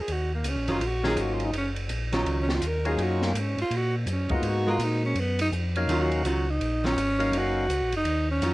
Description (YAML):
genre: soul jazz organ trio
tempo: 166 BPM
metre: 4/4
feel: swing 63% on 8ths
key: Eb minor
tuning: A4 = 440 Hz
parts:
  - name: warm tenor saxophone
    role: melody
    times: 0.0-8.5 s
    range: Bb3 to Bb4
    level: -28 LUFS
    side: right 1 dB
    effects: plate reverb
  - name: mellow tonewheel organ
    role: bass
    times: 0.1-8.5 s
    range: Gb1 to Bb2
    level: -28 LUFS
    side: equal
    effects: slow rotary speaker
  - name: compact cocktail drum kit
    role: drums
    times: 0.1-8.5 s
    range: hi-hat, kick drum, ride cymbal, snare drum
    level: -34 LUFS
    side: right 1 dB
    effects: cassette tape
  - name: archtop guitar, miked and amplified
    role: accompaniment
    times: 0.7-8.5 s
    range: Eb3 to Bb4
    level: -29 LUFS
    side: right 1 dB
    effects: plate reverb
  - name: percussive tonewheel organ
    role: melody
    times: 1.0-7.7 s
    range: Gb3 to F5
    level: -29 LUFS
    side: left 2 dB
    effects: slow rotary speaker, overdrive, plate reverb
room: moderate studio reverb, RT60 0.5 s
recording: home recording on cassette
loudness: -24 LUFS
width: side -18 dB against mid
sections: 0.0-8.5 A section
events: tenor saxophone solo 0.0-8.5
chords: 0.0 Ebm9; 4.4 Abm9; 5.9 Ebm9